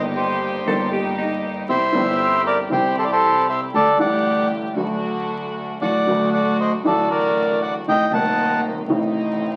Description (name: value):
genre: tango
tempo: 117 BPM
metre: 4/4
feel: rubato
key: unclear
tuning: A4 = 439 Hz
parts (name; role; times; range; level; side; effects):
- bandoneon; melody; 0.0-8.6 s; G4 to A5; -21 LUFS; equal; none
- dark upright piano; accompaniment; 0.0-9.6 s; Eb1 to G4; -26 LUFS; equal; none
- warm studio string section; stabs; 0.0-9.6 s; F#3 to G4; -31 LUFS; equal; none
- warm double bass; bass; 0.0-9.6 s; G1 to Eb2; -31 LUFS; equal; none
- vintage hollow-body jazz guitar; second line; 0.7-1.5 s; Eb4 to A4; -28 LUFS; equal; none
room: wet club reverb, RT60 0.8 s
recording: very old 78 rpm record, vinyl crackle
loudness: -20 LUFS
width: mono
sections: 0.0-9.6 A section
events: none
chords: 0.0 Eb/G; 1.7 C; 3.7 Dsus4; 4.8 D; 7.9 Adim